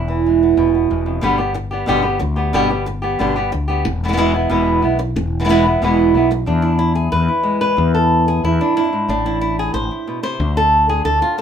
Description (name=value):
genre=flamenco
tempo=183 BPM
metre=4/4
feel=straight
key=unclear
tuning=A4 = 440 Hz
part: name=flamenco guitar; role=melody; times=0.0-11.4 s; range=E2 to C5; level=-16 LUFS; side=right 2 dB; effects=none
part: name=mellow fretless electric bass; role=bass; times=0.0-11.2 s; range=E1 to E2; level=-20 LUFS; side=left 2 dB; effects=none
room=moderate studio reverb, RT60 0.5 s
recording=minimal, uncompressed stereo recording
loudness=-14 LUFS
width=side -8 dB against mid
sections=0.0-1.2 A section; 1.2-6.5 B section; 6.5-11.4 C section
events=none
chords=0.0 E; 1.2 G; 3.9 E; 9.1 Am; 10.4 D5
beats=0.25 0.58 0.90 | 1.23 1.56 1.89 2.21 | 2.54 2.87 3.20 3.52 | 3.85 4.18 4.51 4.83 | 5.16 5.49 5.82 6.14 | 6.47 6.80 7.13 7.45 | 7.78 8.11 8.44 8.76 | 9.09 9.42 9.75 10.07 | 10.40 10.73 11.06 11.39